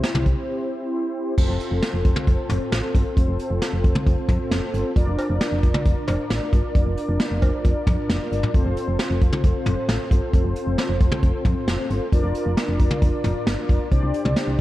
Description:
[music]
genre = synth-pop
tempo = 134 BPM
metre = 4/4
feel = straight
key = F major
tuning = A4 = 444 Hz
[part]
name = mellow synth brass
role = accompaniment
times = 0.0-14.6 s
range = C4 to D5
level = -26 LUFS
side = left 1 dB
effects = chorus
[part]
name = vintage brush drum kit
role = drums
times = 0.0-14.6 s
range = cowbell, crash cymbal, hi-hat, kick drum, snare drum, toms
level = -21 LUFS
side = equal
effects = none
[part]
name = solid FM bass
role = bass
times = 0.1-14.6 s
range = F1 to F2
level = -24 LUFS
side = equal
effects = none
[sound]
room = light reverb, studio reverb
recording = dark, warm production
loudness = -19 LUFS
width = side -16 dB against mid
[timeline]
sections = 0.0-1.4 A section; 1.4-14.6 B section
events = break 0.5-1.4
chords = 0.0 C; 1.4 F; 5.0 Bb/F; 8.5 F; 12.1 Bb/F; 13.9 Csus2

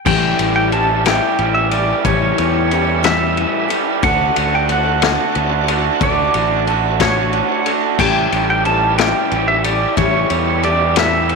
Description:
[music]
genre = folk rock and heartland rock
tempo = 61 BPM (dotted quarters)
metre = 6/8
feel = straight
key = unclear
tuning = A4 = 440 Hz
[part]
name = pedal steel guitar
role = melody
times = 0.1-11.4 s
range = C#5 to A5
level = -19 LUFS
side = right 1 dB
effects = none
[part]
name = picked steel-string acoustic guitar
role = accompaniment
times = 0.1-11.4 s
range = A2 to A4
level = -21 LUFS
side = left 12 dB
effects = none
[part]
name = bright tonewheel organ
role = sustained chords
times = 0.1-11.4 s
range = D4 to E5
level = -29 LUFS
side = right 1 dB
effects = slow rotary speaker, chorus vibrato
[part]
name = raw garage guitar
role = riff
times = 0.1-11.4 s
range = A2 to G4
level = -19 LUFS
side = right 16 dB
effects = overdrive
[part]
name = fingered electric bass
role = bass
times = 0.1-11.4 s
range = A1 to E2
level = -21 LUFS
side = right 1 dB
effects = none
[part]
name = vintage drum kit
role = drums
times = 0.1-11.4 s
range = crash cymbal, kick drum, ride cymbal, snare drum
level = -20 LUFS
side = left 8 dB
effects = none
[sound]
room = light reverb, small room reverb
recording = 1960s-style stereo with parts hard left and right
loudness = -13 LUFS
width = side -4 dB against mid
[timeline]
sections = 0.1-11.4 A section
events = none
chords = 0.1 A7; 4.0 D; 8.0 A7

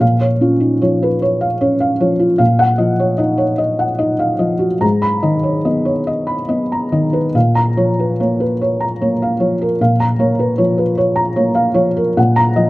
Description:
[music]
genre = neoclassical minimalist piano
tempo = 49 BPM (dotted quarters)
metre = 6/8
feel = uneven beats, rubato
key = unclear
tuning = A4 = 440 Hz
[part]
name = felt-muted upright piano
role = solo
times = 0.0-12.7 s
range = Ab2 to Cb6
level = -13 LUFS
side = equal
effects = none
[sound]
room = little or no reverb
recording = recorded outdoors, with no room sound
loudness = -13 LUFS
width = side -18 dB against mid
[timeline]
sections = 0.0-12.7 A section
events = none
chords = 0.0 Bbm; 2.4 Ebmadd9/Bb; 4.8 Abmadd9; 7.3 Bbm; 12.2 Ebmadd9/Bb

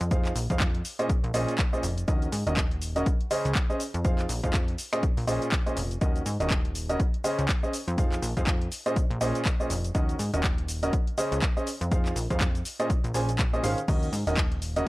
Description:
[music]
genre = piano house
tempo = 122 BPM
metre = 4/4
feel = swing 58% on 16ths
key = Bb minor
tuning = A4 = 440 Hz
[part]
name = plucky analog bass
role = bass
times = 0.0-14.8 s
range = Eb1 to Ab2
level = -30 LUFS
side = equal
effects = sidechain pumping
[part]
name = house drum kit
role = drums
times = 0.0-14.8 s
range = crash cymbal, finger snaps, handclaps, hi-hat, shaker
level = -34 LUFS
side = equal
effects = overdrive
[part]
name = clear upright piano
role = riff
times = 0.1-14.9 s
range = Bb2 to Ab5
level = -30 LUFS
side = right 1 dB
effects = sidechain pumping, analog delay
[part]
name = electronic kick drum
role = drums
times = 0.1-14.5 s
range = none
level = -26 LUFS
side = equal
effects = none
[sound]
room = digital ambience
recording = dry, gritty hardware recording, transformer saturation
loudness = -24 LUFS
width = side -20 dB against mid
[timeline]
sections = 0.0-14.9 A section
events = none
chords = 0.0 Fm7; 0.8 Bbm11; 2.1 Ebm7; 3.1 Abadd11/Db; 3.8 Fm7; 4.8 Bbm11; 6.0 Ebm7; 7.0 Abadd11/Db; 7.7 Fm7; 8.7 Bbm11; 9.9 Ebm7; 10.9 Abadd11/Db; 11.7 Fm7; 12.7 Bbm11; 13.9 Ebm7

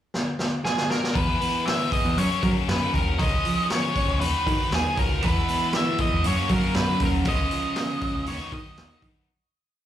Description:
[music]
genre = quiet-loud alternative rock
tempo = 118 BPM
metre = 4/4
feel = straight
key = unclear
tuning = A4 = 441 Hz
[part]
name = raw garage drum kit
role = drums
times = 0.1-9.1 s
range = hi-hat, kick drum, snare drum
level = -27 LUFS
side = equal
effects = none
[part]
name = octave-fuzz lead guitar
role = melody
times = 0.6-9.0 s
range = Ab4 to E5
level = -27 LUFS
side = right 1 dB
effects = distortion, slapback echo, digital delay
[part]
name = tight distorted guitar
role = riff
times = 1.1-9.3 s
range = Gb2 to E4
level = -30 LUFS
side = left 12 dB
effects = distortion, slapback echo
[part]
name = picked steel-string acoustic guitar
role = arpeggios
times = 1.2-9.3 s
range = Gb2 to G#4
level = -32 LUFS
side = right 1 dB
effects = none
[part]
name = growling picked electric bass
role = bass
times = 1.2-9.1 s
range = Db2 to Gb3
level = -26 LUFS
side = equal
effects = overdrive
[part]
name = crunchy overdriven guitar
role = riff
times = 5.2-9.3 s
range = Gb2 to E4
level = -30 LUFS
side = right 7 dB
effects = slapback echo
[sound]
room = little or no reverb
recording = live gig heard through the venue's PA, club reverb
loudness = -21 LUFS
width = side -11 dB against mid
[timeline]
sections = 0.0-1.2 pickup bar; 1.2-9.3 pre-chorus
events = drum fill 0.1-1.2; fade-out 7.3-9.3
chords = 0.0 N.C.; 1.2 E; 2.2 Gb; 3.2 Db; 4.2 Cb/Eb; 5.2 E; 6.3 Gb; 7.3 Db; 8.3 Cb/Eb

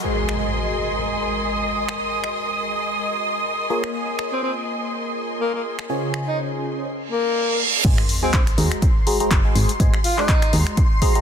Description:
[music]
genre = piano house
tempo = 123 BPM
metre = 4/4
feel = swing 56% on 16ths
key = Ab mixolydian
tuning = A4 = 440 Hz
[part]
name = analog string pad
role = sustained chords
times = 0.0-11.2 s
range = C6 to Eb6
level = -28 LUFS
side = right 2 dB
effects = ensemble chorus, sidechain pumping
[part]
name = barking FM electric piano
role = riff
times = 0.0-11.2 s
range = Db3 to Bb5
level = -26 LUFS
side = equal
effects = phaser, sidechain pumping, dub echo
[part]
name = impact, reverse cymbal and sub drop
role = sound effects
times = 0.0-2.0, 7.1-9.8 s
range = none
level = -26 LUFS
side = right 2 dB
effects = none
[part]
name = warm symphonic string section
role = texture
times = 0.0-6.9 s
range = Db4 to C6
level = -28 LUFS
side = left 2 dB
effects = sidechain pumping
[part]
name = punchy analog drum machine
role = drums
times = 0.3-11.2 s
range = crash cymbal, finger snaps, handclaps, hi-hat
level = -28 LUFS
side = left 1 dB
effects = none
[part]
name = warm tenor saxophone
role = melody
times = 4.3-10.5 s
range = Bb3 to F4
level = -26 LUFS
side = left 2 dB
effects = dub echo
[part]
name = solid FM bass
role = bass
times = 7.8-10.6 s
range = Gb1 to Eb2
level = -21 LUFS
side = equal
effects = sidechain pumping
[part]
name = electronic kick drum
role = drums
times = 7.8-11.1 s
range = none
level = -18 LUFS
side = equal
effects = none
[sound]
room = light reverb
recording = dense, heavily limited modern master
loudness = -19 LUFS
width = side -8 dB against mid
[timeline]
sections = 0.0-7.8 A section; 7.8-11.2 B section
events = impact 0.0-2.0, 7.8-9.8; reverse cymbal 7.1-7.8; drop 7.8-11.2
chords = 0.0 Ab7; 3.7 Bbm7; 5.9 Dbmaj7; 7.8 Ab7

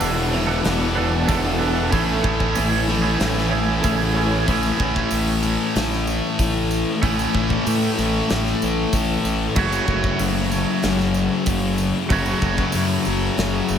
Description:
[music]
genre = rock, shoegaze and dream pop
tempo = 94 BPM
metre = 4/4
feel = straight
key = A major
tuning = A4 = 444 Hz
[part]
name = picked twelve-string acoustic guitar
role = arpeggios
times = 0.0-4.5 s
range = E3 to A4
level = -29 LUFS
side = right 4 dB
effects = analog chorus, tape echo
[part]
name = distorted electric guitar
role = riff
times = 0.0-13.8 s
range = E2 to A3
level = -25 LUFS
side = equal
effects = overdrive
[part]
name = thick fuzz guitar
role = riff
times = 0.0-13.8 s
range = E2 to A3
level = -24 LUFS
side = left 6 dB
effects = distortion, lush chorus
[part]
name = twangy electric guitar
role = riff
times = 0.0-13.8 s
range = E3 to C#5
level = -26 LUFS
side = right 6 dB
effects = reverse reverb
[part]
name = fuzz fingered electric bass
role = bass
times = 0.0-13.8 s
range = E1 to A2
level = -25 LUFS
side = equal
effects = overdrive
[part]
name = big rock drum kit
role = drums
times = 0.0-13.5 s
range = crash cymbal, hi-hat, kick drum, snare drum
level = -27 LUFS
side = equal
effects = none
[part]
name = tambourine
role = percussion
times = 0.0-13.8 s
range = none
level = -36 LUFS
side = right 8 dB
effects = none
[sound]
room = wet cathedral reverb, RT60 5.5 s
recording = dreamy mix soaked in reverb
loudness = -18 LUFS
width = side -8 dB against mid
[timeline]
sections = 0.0-4.5 A section; 4.5-13.8 B section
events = none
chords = 0.0 E7sus4; 1.9 Amaj7; 9.6 F#m7

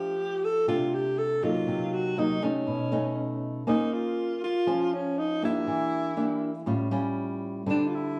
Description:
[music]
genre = bossa nova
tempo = 120 BPM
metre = 4/4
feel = straight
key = unclear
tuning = A4 = 440 Hz
[part]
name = breathy alto saxophone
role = melody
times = 0.0-8.2 s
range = Db4 to A4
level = -30 LUFS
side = equal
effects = plate reverb
[part]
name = nylon-string guitar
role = accompaniment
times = 0.0-8.2 s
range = A2 to C5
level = -31 LUFS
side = equal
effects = none
[sound]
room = moderate studio reverb, RT60 0.5 s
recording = small room ambience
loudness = -28 LUFS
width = mono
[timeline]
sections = 0.0-8.2 A section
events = none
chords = 0.0 F69; 1.7 Cm7b5; 2.7 B9; 3.7 Bbm9; 5.7 Em7b5; 6.7 A7b13; 7.7 D9sus4

